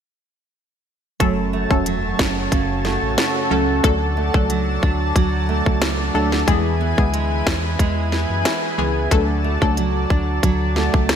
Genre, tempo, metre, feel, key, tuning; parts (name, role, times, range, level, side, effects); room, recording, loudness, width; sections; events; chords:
dancehall; 91 BPM; 4/4; straight; F# minor; A4 = 438 Hz
analog pluck; accompaniment; 1.2-9.7 s; E3 to A4; -22 LUFS; left 1 dB; chorus
lush unison pad; sustained chords; 1.2-11.2 s; E4 to A5; -25 LUFS; left 1 dB; chorus, sidechain pumping
nylon-string guitar; arpeggios; 1.2-11.2 s; F#2 to E4; -24 LUFS; right 8 dB; wide subtle chorus
sub bass with octave; bass; 1.2-11.2 s; E1 to F#2; -23 LUFS; left 1 dB
island pop drum kit; drums; 1.2-11.2 s; hi-hat, kick drum, rim click, snare drum; -20 LUFS; left 1 dB; gated reverb
moderate lush hall reverb, RT60 2.8 s; bright 1980s-style digital production; -17 LUFS; side -8 dB against mid
1.2-11.2 A section
1.2 F#m; 3.8 D; 6.5 E; 9.1 D